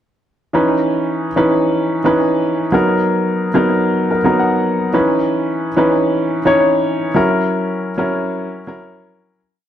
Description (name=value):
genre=disco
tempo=109 BPM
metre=4/4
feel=straight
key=C# dorian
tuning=A4 = 440 Hz
part: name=warm concert grand piano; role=solo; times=0.5-9.4 s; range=E3 to F#5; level=-14 LUFS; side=equal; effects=slapback echo
room=light reverb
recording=dry, close 1970s-style studio recording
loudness=-14 LUFS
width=side -10 dB against mid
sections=0.5-9.4 verse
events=grand piano fill 3.8-4.9; fade-out 7.2-9.4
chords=0.5 C#m9; 2.7 Bmaj7; 4.9 C#m9; 7.2 F#7